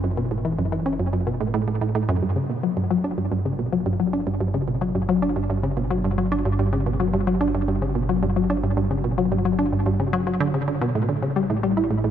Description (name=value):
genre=ambient, sequencer-driven space music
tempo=110 BPM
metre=4/4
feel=straight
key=unclear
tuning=A4 = 440 Hz
part: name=resonant blip pluck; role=riff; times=0.0-12.1 s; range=F#2 to E4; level=-21 LUFS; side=equal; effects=chorus, vintage 12-bit sampler grit, tape echo
part: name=fat analog bass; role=bass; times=0.0-12.1 s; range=F#1 to A1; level=-31 LUFS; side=equal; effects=none
room=moderate huge ambient reverb, RT60 8.1 s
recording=none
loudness=-20 LUFS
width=side -10 dB against mid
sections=0.0-12.1 A section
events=fade-in on analog synth bass 0.0-12.1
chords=0.0 F#m; 2.2 G5; 11.0 N.C.